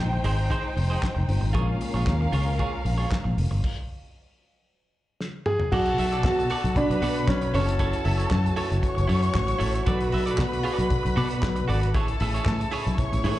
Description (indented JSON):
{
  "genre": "disco",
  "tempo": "116 BPM",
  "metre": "4/4",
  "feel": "straight",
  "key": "Bb dorian, B dorian from 5.7 s",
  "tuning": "A4 = 441 Hz",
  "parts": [
    { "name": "warm studio violin section", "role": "second line", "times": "0.0-13.4 s", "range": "Db4 to C#6", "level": "-32 LUFS", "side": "left 1 dB", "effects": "slapback echo" },
    { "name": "clean electric guitar", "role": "accompaniment", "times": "0.0-13.4 s", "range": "Eb4 to E5", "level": "-32 LUFS", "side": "right 5 dB", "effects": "spring reverb, slapback echo" },
    { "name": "mellow tine electric piano", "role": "accompaniment", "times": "0.0-3.7 s", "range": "Ab3 to C5", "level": "-37 LUFS", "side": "left 6 dB", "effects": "medium stereo tremolo, slapback echo" },
    { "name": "fingered electric bass", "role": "bass", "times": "0.0-13.4 s", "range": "F1 to B2", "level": "-25 LUFS", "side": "equal", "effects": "none" },
    { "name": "warm soul drum kit", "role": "drums", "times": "0.2-13.4 s", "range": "crash cymbal, handclaps, hi-hat, kick drum, snare drum, toms", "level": "-30 LUFS", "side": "equal", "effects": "none" },
    { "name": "warm French horn section", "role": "sustained chords", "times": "1.6-13.4 s", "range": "Db3 to F#4", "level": "-34 LUFS", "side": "left 1 dB", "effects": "none" },
    { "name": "warm grand piano", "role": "melody", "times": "5.5-9.1 s", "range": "C#4 to Ab4", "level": "-26 LUFS", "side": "equal", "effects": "tube saturation, slapback echo" }
  ],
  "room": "small room ambience",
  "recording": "live gig heard through the venue's PA, club reverb, nothing above 10.8 kHz",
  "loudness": "-22 LUFS",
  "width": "side -15 dB against mid",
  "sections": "0.0-5.7 A section; 5.7-13.4 B section",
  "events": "stop 3.6-5.7; drum fill 5.2-5.7",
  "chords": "0.0 Fm7; 1.6 Bbm7; 3.6 N.C.; 5.7 Bm7; 7.5 F#m7; 9.9 Bm7; 11.9 Amaj7"
}